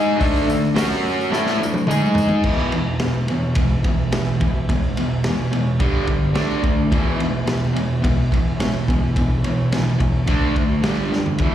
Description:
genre	garage rock duo or trio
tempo	107 BPM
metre	4/4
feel	straight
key	E mixolydian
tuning	A4 = 440 Hz
part	combo organ	sustained chords	0.0-11.5 s	C#4 to E5	-31 LUFS	left 1 dB	lush chorus
part	fuzz guitar	riff	0.0-11.5 s	E2 to A4	-19 LUFS	equal	distortion, slapback echo
part	crunchy breakbeat drum kit	drums	0.2-11.5 s	crash cymbal, hi-hat, kick drum, ride cymbal, snare drum, toms	-22 LUFS	equal	none
part	tambourine	percussion	0.4-2.3 s	none	-39 LUFS	left 3 dB	none
room	light reverb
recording	live gig heard through the venue's PA, recital hall reverb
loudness	-17 LUFS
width	side -11 dB against mid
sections	0.0-2.4 A section; 2.4-11.5 B section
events	drum fill 1.3-2.4, 11.1; transistor combo organ fill 1.6-2.4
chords	0.2 D5; 0.8 F#5; 1.3 D5; 1.9 G#5; 2.4 E; 5.8 G5; 6.4 D5; 6.9 E; 10.3 D5; 10.8 G5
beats	| 0.21 0.77 1.33 1.89 | 2.45 3.01 3.57 4.12 | 4.68 5.24 5.80 6.36 | 6.92 7.48 8.04 8.60 | 9.16 9.72 10.28 10.84 | 11.40

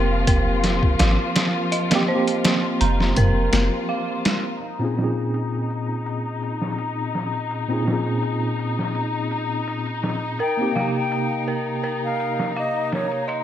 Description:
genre	trip hop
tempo	83 BPM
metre	4/4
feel	straight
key	Bb dorian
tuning	A4 = 440 Hz
part	tine electric piano	accompaniment	0.0-13.4 s	Bb2 to Ab4	-25 LUFS	right 1 dB	medium stereo tremolo, vintage 12-bit sampler grit, tape echo
part	muted studio string section	sustained chords	0.0-13.4 s	F3 to F4	-28 LUFS	left 3 dB	low-pass filter
part	dark detuned synth bell	arpeggios	0.0-4.6, 10.4-13.4 s	Bb4 to Bb5	-27 LUFS	right 1 dB	chorus, tape echo
part	soft 808-style bass	bass	0.0-3.7 s	F1 to Ab1	-22 LUFS	equal	none
part	trip hop sampler-style drum kit	drums	0.3-13.4 s	hi-hat, kick drum, snare drum	-23 LUFS	equal	low-pass filter on hats, low-pass filter on kick, low-pass filter on snare
part	mellow silver concert flute	melody	10.4-13.3 s	Db5 to G5	-26 LUFS	left 2 dB	tape echo
room	light reverb, digital ambience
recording	none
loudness	-20 LUFS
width	side -11 dB against mid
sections	0.0-4.6 A section; 4.6-13.4 B section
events	filter sweep on string section 4.6-13.4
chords	0.0 Abmaj9 (rootless); 4.6 Bbm11; 10.4 Cm7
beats	0.28 1.00 | 1.73 2.45 3.17 3.90 | 4.62 5.34 6.06 6.79 | 7.51 8.23 8.96 9.68 | 10.40 11.12 11.85 12.57 | 13.29

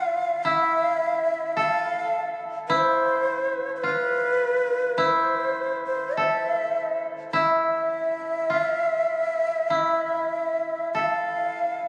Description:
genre	japanese traditional, Japanese chamber music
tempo	47-54 BPM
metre	4/4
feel	rubato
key	E miyako bushi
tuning	A4 = 439 Hz
part	breathy shakuhachi	melody	0.0-11.9 s	B4 to F5	-27 LUFS	equal	none
part	koto	second line	0.0-11.9 s	E4 to A4	-28 LUFS	equal	none
room	wet cathedral reverb, RT60 6.0 s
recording	recorded on a phone in the room, studio reverb, compression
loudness	-24 LUFS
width	mono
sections	0.0-11.9 A section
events	none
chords	none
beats	0.46 1.59 | 2.71 3.85 5.01 6.17 | 7.34 8.52 9.71 10.95

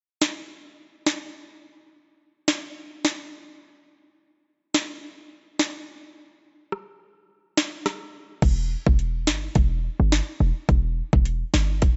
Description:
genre	dancehall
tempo	106 BPM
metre	4/4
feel	swing 56% on 16ths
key	E minor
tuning	A4 = 440 Hz
part	island pop drum kit	drums	0.2-12.0 s	crash cymbal, hi-hat, kick drum, rim click, snare drum	-25 LUFS	equal	overdrive
part	short 808-style bass	bass	8.4-12.0 s	E1 to G1	-25 LUFS	equal	none
room	little or no reverb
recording	nothing above 7.9 kHz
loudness	-25 LUFS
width	mono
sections	0.0-8.4 A section; 8.4-12.0 B section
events	none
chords	none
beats	0.50 1.06 | 1.63 2.20 2.76 3.33 | 3.90 4.46 5.03 5.59 | 6.16 6.72 7.29 7.86 | 8.42 8.99 9.55 10.12 | 10.69 11.25 11.82

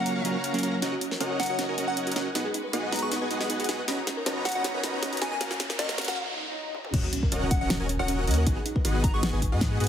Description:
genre	future bass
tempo	157 BPM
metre	4/4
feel	half-time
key	Eb minor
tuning	A4 = 440 Hz
part	plucky unison lead	melody	0.0-9.3 s	Eb5 to Db6	-34 LUFS	left 1 dB	sidechain pumping, dub echo
part	semi-hollow electric guitar	accompaniment	0.0-0.8 s	Gb3 to Bb4	-30 LUFS	right 3 dB	lush chorus, sidechain pumping, digital delay
part	bright studio string section	sustained chords	0.0-6.9 s	Bb2 to A#5	-39 LUFS	left 2 dB	sidechain pumping
part	dense compressed supersaw	riff	0.0-9.9 s	Cb4 to Db6	-30 LUFS	equal	sidechain pumping
part	pop drum kit	drums	0.1-9.9 s	crash cymbal, hi-hat, snare drum, toms	-31 LUFS	equal	high-pass filter on hats, high-pass filter on snare, high-pass filter on toms, high-pass filter on cymbals, high-pass filter on room
part	thumb-piano-like synth pluck	arpeggios	0.8-9.9 s	Db4 to Eb5	-35 LUFS	right 2 dB	chorus, cassette tape, sidechain pumping, digital delay
part	riser, swell and impact	sound effects	2.6-8.5 s	none	-37 LUFS	equal	none
part	saturated sub bass	bass	6.9-9.9 s	Eb1 to Ab2	-27 LUFS	equal	sidechain pumping
part	electronic kick drum	drums	6.9-9.7 s	none	-27 LUFS	equal	none
room	moderate digital room reverb, RT60 1.2 s, digital ambience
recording	heavily compressed radio sound, high-pass filter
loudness	-25 LUFS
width	side -9 dB against mid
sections	0.0-6.9 A section; 6.9-9.9 B section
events	build-up 0.0-6.9; filter sweep 0.0-6.9; drum fill 0.8-6.2, 6.7; break 6.2-6.9; swell 6.2-6.9; drop 6.9-9.9; impact 6.9-8.5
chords	0.0 Gbmaj7/Bb; 0.8 Ebm7; 2.4 Abm7; 3.9 Bmaj9; 5.4 Gbmaj7/Bb; 6.9 Ebm7; 8.5 Abm7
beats	0.06 0.44 | 0.82 1.20 1.59 1.97 | 2.35 2.73 3.12 3.50 | 3.88 4.26 4.64 5.03 | 5.41 5.79 6.17 6.55 | 6.94 7.32 7.70 8.08 | 8.47 8.85 9.23 9.61

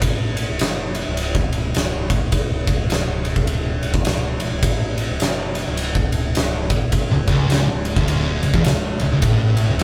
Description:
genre	stoner and doom metal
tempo	104 BPM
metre	4/4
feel	swing 61% on 8ths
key	C# minor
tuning	A4 = 440 Hz
part	growling picked electric bass	bass	0.0-9.8 s	C#1 to A1	-28 LUFS	equal	overdrive
part	oversized low-tuned drum kit	drums	0.0-9.8 s	kick drum, ride cymbal, snare drum	-22 LUFS	equal	none
part	thick fuzz guitar	riff	7.1-9.8 s	C#2 to A2	-24 LUFS	equal	distortion
part	thick fuzz guitar	riff	7.1-9.8 s	C#2 to A2	-22 LUFS	equal	distortion
room	light reverb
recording	band playing live in one room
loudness	-20 LUFS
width	mono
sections	0.0-9.8 A section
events	none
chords	none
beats	| 0.02 0.60 1.18 1.75 | 2.33 2.91 3.48 4.06 | 4.63 5.21 5.78 6.35 | 6.93 7.50 8.07 8.65 | 9.22 9.80

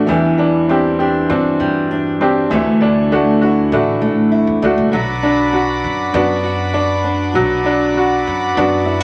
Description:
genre	acoustic folk duo or small band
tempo	99 BPM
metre	4/4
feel	straight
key	unclear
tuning	A4 = 439 Hz
part	fingerpicked steel-string acoustic guitar	accompaniment	0.0-9.0 s	D2 to F#4	-19 LUFS	equal	none
part	bright upright piano	arpeggios	0.0-9.0 s	E3 to G4	-19 LUFS	equal	none
part	upright bass	bass	0.0-9.0 s	A1 to G2	-27 LUFS	equal	none
part	hand-pumped harmonium	sustained chords	4.9-9.0 s	F#4 to B5	-23 LUFS	equal	none
room	moderate studio reverb, RT60 0.7 s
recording	none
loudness	-15 LUFS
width	mono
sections	0.0-4.9 A section; 4.9-9.0 B section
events	none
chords	0.1 Cadd9/E; 2.5 Dadd9; 4.9 Bm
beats	| 0.08 0.69 1.30 1.90 | 2.51 3.11 3.72 4.33 | 4.93 5.54 6.14 6.75 | 7.36 7.96 8.56

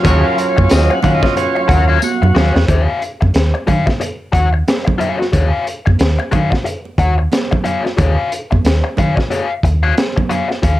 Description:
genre	funk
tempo	91 BPM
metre	4/4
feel	swing 60% on 16ths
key	Eb minor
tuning	A4 = 435 Hz
part	raw garage guitar	accompaniment	0.0-10.8 s	Gb4 to Gb5	-19 LUFS	left 4 dB	wah, overdrive, tube saturation
part	warm studio string section	sustained chords	0.0-2.7 s	Gb3 to F5	-27 LUFS	left 1 dB	none
part	overdriven tonewheel organ	stabs	0.0-2.7 s	Gb3 to Gb5	-16 LUFS	right 2 dB	slow rotary speaker, slapback echo
part	vintage muted fingered electric bass	bass	0.0-10.8 s	Eb2 to Eb3	-14 LUFS	equal	none
part	crunchy breakbeat drum kit	drums	0.0-10.8 s	hi-hat, kick drum, snare drum	-17 LUFS	equal	none
part	congas	percussion	0.0-10.8 s	none	-23 LUFS	right 6 dB	none
part	tambourine	percussion	0.7-2.2 s	none	-27 LUFS	left 3 dB	none
room	light reverb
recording	none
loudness	-12 LUFS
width	side -15 dB against mid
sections	0.0-2.7 A section; 2.7-10.8 B section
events	tonewheel organ solo 0.0-2.7; drum fill 2.0-2.7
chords	0.0 Ebm9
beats	| 0.06 0.71 1.37 2.03 | 2.69 3.35 4.01 4.67 | 5.33 6.00 6.66 7.32 | 7.99 8.65 9.31 9.97 | 10.63

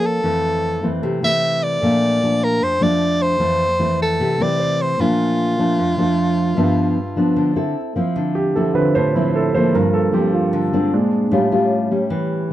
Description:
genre	bossa nova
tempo	152 BPM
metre	4/4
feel	straight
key	F major, D minor from 8.2 s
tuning	A4 = 440 Hz
part	breathy soprano saxophone	melody	0.0-7.8 s	F4 to E5	-20 LUFS	equal	none
part	nylon-string guitar	accompaniment	0.0-12.5 s	F2 to A4	-18 LUFS	left 1 dB	none
part	warm grand piano	accompaniment	1.0-12.5 s	G2 to E5	-19 LUFS	right 2 dB	none
room	light reverb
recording	dry, close 1970s-style studio recording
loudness	-16 LUFS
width	side -13 dB against mid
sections	0.0-8.2 A section; 8.2-12.5 B section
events	grand piano solo 8.2-12.5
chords	0.2 Fmaj7; 1.8 Bbmaj7; 3.4 Fmaj7; 5.0 Bbmaj7; 6.6 G7; 7.8 Fmaj7; 8.2 Dm9; 9.7 Gm7; 10.9 Bb9; 11.3 A7b13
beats	| 0.23 0.63 1.02 1.42 | 1.82 2.21 2.61 3.00 | 3.40 3.80 4.19 4.59 | 4.99 5.38 5.78 6.17 | 6.57 6.97 7.36 7.76 | 8.15 8.55 8.95 9.34 | 9.74 10.13 10.53 10.92 | 11.32 11.71 12.11 12.51

